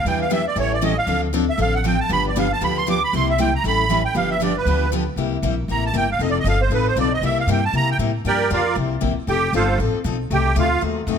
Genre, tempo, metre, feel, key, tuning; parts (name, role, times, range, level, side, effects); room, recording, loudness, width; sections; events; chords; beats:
acoustic string swing (jazz manouche); 234 BPM; 4/4; swing 56% on 8ths; C major; A4 = 440 Hz
musette accordion; melody; 0.0-10.8 s; F4 to D6; -21 LUFS; right 4 dB
upright bass; bass; 0.0-11.2 s; F1 to C3; -23 LUFS; equal
picked steel-string acoustic guitar; accompaniment; 0.1-11.2 s; C3 to A4; -24 LUFS; left 8 dB
picked steel-string acoustic guitar; accompaniment; 0.1-5.0 s; C3 to B4; -26 LUFS; right 6 dB
light reverb; close, detailed microphones; -17 LUFS; side -7 dB against mid
0.0-5.2 A section; 5.2-11.2 A section
accordion solo 0.0-11.2
0.1 Em7; 0.6 A7; 1.1 Dm7; 2.1 G7; 3.1 C7; 3.6 A7; 4.2 G7; 5.2 C7; 6.2 F7; 7.2 C7; 8.3 Gm7; 8.8 C7; 9.3 F7; 10.3 F#dim7
| 0.05 0.31 0.57 0.82 | 1.08 1.34 1.59 1.85 | 2.10 2.36 2.62 2.87 | 3.13 3.39 3.64 3.90 | 4.16 4.41 4.67 4.92 | 5.18 5.44 5.69 5.95 | 6.21 6.46 6.72 6.98 | 7.23 7.49 7.75 8.00 | 8.26 8.52 8.77 9.03 | 9.29 9.54 9.80 10.05 | 10.31 10.57 10.82 11.08